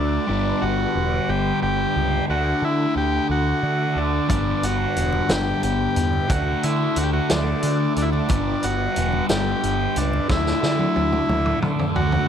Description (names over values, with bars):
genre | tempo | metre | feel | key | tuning
psychedelic rock | 60 BPM (dotted quarters) | 6/8 | straight | unclear | A4 = 440 Hz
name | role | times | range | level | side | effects
combo organ | melody | 0.0-12.3 s | D4 to G4 | -24 LUFS | equal | analog delay
tonewheel organ | sustained chords | 0.0-12.3 s | A4 to D6 | -36 LUFS | right 4 dB | chorus vibrato, slow rotary speaker
fuzz guitar | riff | 0.0-12.3 s | G2 to D4 | -24 LUFS | left 1 dB | distortion, phaser
overdriven picked electric bass | bass | 0.0-12.2 s | E1 to D3 | -25 LUFS | equal | none
vintage drum kit | drums | 4.3-12.3 s | hi-hat, kick drum, snare drum, toms | -25 LUFS | equal | none
congas | percussion | 4.3-12.3 s | none | -35 LUFS | right 3 dB | none
room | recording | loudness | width
light reverb, studio reverb | none | -19 LUFS | side -8 dB against mid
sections
0.0-12.3 A section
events
drum fill 10.3-12.3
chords
0.3 G; 2.3 Dadd9; 4.3 G; 6.3 Dadd9; 8.3 G; 10.3 Dsus2